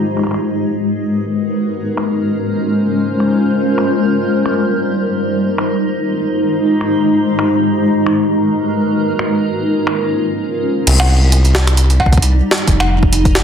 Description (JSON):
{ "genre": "IDM", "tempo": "133 BPM", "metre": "4/4", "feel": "swing 56% on 16ths", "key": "C phrygian", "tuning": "A4 = 440 Hz", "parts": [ { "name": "granular cloud pad", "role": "sustained chords", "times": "0.0-13.4 s", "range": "G3 to C5", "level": "-14 LUFS", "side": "equal", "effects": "built-in reverb, sidechain pumping" }, { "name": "jungle sampler-style drum kit", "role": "drums", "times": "0.2-13.4 s", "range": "cowbell, crash cymbal, finger snaps, hi-hat, snare drum", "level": "-18 LUFS", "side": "equal", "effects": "low-pass filter on hats, soft clipping on snare, low-pass filter on snare, low-pass filter on perc, low-pass filter on cymbals, low-pass filter on room, digital delay" }, { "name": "round analog bass", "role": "bass", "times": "10.9-13.4 s", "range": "F1 to C2", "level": "-12 LUFS", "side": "equal", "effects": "none" }, { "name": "electronic kick drum", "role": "drums", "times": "12.0-13.3 s", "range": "none", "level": "-15 LUFS", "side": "equal", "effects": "overdrive" } ], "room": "moderate digital room reverb, RT60 1.0 s", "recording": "dense, heavily limited modern master", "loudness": "-12 LUFS", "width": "side -8 dB against mid", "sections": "0.0-10.9 A section; 10.9-13.4 B section", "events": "filter sweep on ambient pad 0.0-10.9", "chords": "0.0 Abm9; 1.6 Bbm9; 3.7 Cm7; 5.2 Fm9; 7.3 Abm9; 8.8 Bbm9; 10.9 Cm; 12.4 Fm9", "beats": "| 0.04 0.49 0.95 1.40 | 1.85 2.30 2.75 3.20 | 3.65 4.10 4.55 5.01 | 5.46 5.91 6.36 6.81 | 7.26 7.71 8.16 8.62 | 9.07 9.52 9.97 10.42 | 10.87 11.32 11.77 12.22 | 12.68 13.13" }